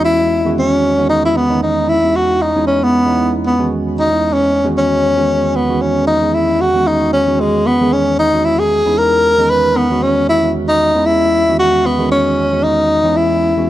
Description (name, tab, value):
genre	jazz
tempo	114 BPM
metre	4/4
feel	swing 56% on 16ths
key	E major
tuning	A4 = 440 Hz
part	breathy tenor saxophone	melody	0.0-13.7 s	G#3 to B4	-12 LUFS	left 1 dB	none
part	bright tine electric piano	accompaniment	0.0-13.7 s	E2 to G#4	-18 LUFS	right 2 dB	analog chorus
room	light reverb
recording	dark, warm production, lossy compression artefacts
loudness	-11 LUFS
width	side -13 dB against mid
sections	0.0-13.7 A section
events	none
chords	0.0 E69